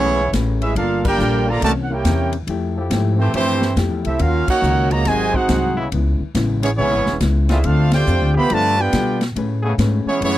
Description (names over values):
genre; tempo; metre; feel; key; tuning
jazz, big band swing; 140 BPM; 4/4; swing 65% on 8ths; unclear; A4 = 440 Hz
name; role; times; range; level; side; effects
bright trumpet section; melody; 0.0-10.4 s; A3 to B5; -20 LUFS; right 1 dB; none
bright trombone section; second line; 0.0-10.4 s; B#2 to G4; -22 LUFS; right 5 dB; none
hollow-body jazz guitar; accompaniment; 0.0-10.4 s; G#2 to B4; -24 LUFS; left 5 dB; none
clear trombone section; sustained chords; 0.0-9.7 s; C#3 to Bb4; -27 LUFS; left 3 dB; none
upright bass; bass; 0.0-10.4 s; E1 to B2; -19 LUFS; equal; none
swinging big-band drum kit; drums; 0.3-10.4 s; crash cymbal, hi-hat, kick drum, ride cymbal, snare drum; -25 LUFS; equal; none
room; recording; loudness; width
little or no reverb; dry, close 1970s-style studio recording; -15 LUFS; side -14 dB against mid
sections
0.0-10.4 A section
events
band accent 1.0, 4.4, 7.9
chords
0.0 Amaj9; 0.8 Gm9; 1.6 C7b9; 2.5 Fmaj9; 4.2 D#m7; 5.1 G#7; 5.9 C#m7; 7.6 Dm7; 8.5 G9; 9.4 Amaj9